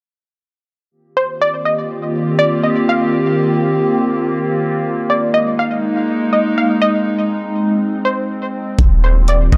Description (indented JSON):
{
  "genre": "hip hop, atmospheric cloud-rap",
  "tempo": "122 BPM",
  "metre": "4/4",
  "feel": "half-time",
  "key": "Eb major",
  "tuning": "A4 = 439 Hz",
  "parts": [
    { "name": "warbly tape-like pad", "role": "sustained chords", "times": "1.5-9.6 s", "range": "Eb3 to G4", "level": "-19 LUFS", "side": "equal", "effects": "chorus, built-in reverb, phaser, sidechain pumping" },
    { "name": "warbly dusty pluck", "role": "melody", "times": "1.2-9.6 s", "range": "C5 to F5", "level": "-21 LUFS", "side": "equal", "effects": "chorus, digital delay" },
    { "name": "clean 808-style bass", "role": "bass", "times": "8.8-9.6 s", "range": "Eb1", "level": "-14 LUFS", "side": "equal", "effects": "none" },
    { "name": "smooth R&B drum kit", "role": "drums", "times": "8.8-9.6 s", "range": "hi-hat, kick drum", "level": "-16 LUFS", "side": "equal", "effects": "none" }
  ],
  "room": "light reverb",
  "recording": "dark, warm production",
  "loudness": "-16 LUFS",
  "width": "mono",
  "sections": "0.9-9.6 A section",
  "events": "none",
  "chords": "0.9 Eb69; 4.9 Bb9sus4; 8.8 Eb69"
}